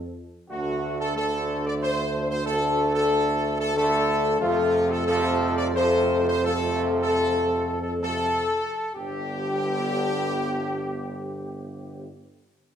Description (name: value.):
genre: classical, ceremonial fanfare.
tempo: 64-94 BPM.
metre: 3/4.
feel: straight.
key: G major.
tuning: A4 = 438 Hz.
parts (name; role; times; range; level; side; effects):
mellow trumpet section; melody; 0.0-12.1 s; F4 to D5; -26 LUFS; equal; none.
bright trombone section; sustained chords; 0.0-12.1 s; G2 to C4; -31 LUFS; right 3 dB; none.
dark French horn section; sustained chords; 0.0-12.1 s; A3 to A4; -29 LUFS; left 5 dB; none.
warm tuba; bass; 0.0-12.1 s; G1 to F2; -29 LUFS; right 2 dB; none.
room: wet recital hall reverb, RT60 1.3 s.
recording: minimal, uncompressed stereo recording.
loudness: -22 LUFS.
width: side -8 dB against mid.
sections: 0.5-9.0 A section; 9.0-12.8 B section.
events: slowing down 3.4-9.0.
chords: 0.0 F; 0.5 D5; 4.4 F; 9.0 G.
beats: | 0.51 1.17 1.82 | 2.47 3.12 3.77 | 4.41 5.07 5.75 | 6.46 7.21 8.04 | 8.95 9.87 10.80 | 11.72.